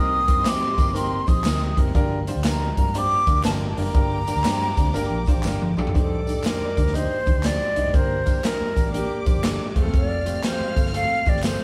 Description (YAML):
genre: uptempo 1960s-style soul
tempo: 120 BPM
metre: 4/4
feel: swing 66% on 8ths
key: C dorian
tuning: A4 = 440 Hz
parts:
  - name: breathy mellow silver concert flute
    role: melody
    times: 0.0-11.6 s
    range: G4 to Eb6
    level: -27 LUFS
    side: equal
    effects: none
  - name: warm studio string section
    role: second line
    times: 0.0-11.6 s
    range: G4 to F6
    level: -39 LUFS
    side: equal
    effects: none
  - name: warm grand piano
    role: accompaniment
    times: 0.0-11.6 s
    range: A3 to Eb5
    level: -32 LUFS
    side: equal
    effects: none
  - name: vintage muted fingered electric bass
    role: bass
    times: 0.0-11.6 s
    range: E1 to C3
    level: -29 LUFS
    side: equal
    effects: none
  - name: swinging big-band drum kit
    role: drums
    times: 0.3-11.6 s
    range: hi-hat, kick drum, snare drum, toms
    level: -25 LUFS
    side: equal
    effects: none
  - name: congas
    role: percussion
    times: 0.3-11.6 s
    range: none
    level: barely audible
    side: none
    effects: none
  - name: tambourine and handclaps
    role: percussion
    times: 0.3-11.6 s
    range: none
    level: -41 LUFS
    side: equal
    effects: none
room: moderate studio reverb, RT60 0.7 s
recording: band playing live in one room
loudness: -22 LUFS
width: mono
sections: 0.0-5.9 A section; 5.9-11.6 B section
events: drum fill 5.4-5.9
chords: 0.0 Cm7; 2.0 Gm7; 5.9 Cmadd9; 7.9 Gm; 9.7 F